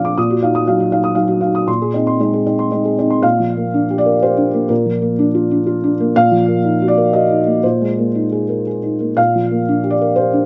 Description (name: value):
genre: neoclassical minimalist piano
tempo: 112-125 BPM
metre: 3/4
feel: rubato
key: unclear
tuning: A4 = 440 Hz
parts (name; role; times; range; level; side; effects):
- felt-muted upright piano; solo; 0.0-10.5 s; Bb2 to Eb6; -16 LUFS; equal; none
room: light reverb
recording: recorded outdoors, with no room sound, nothing above 7.8 kHz, faint mains hum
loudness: -16 LUFS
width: mono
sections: 0.0-3.2 A section; 3.2-10.5 B section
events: none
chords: 0.2 Ebmadd9/Bb; 1.7 Abadd9/Bb; 3.2 Gm7/Bb; 4.7 Bb; 6.1 Ebmadd9/Bb; 7.6 Abadd9/Bb; 9.2 Gm7/Bb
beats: | 0.17 0.65 1.15 | 1.68 2.20 2.72 | 3.23 3.73 4.22 | 4.70 5.19 5.67 | 6.15 6.63 7.12 | 7.63 8.15 8.66 | 9.17 9.68 10.17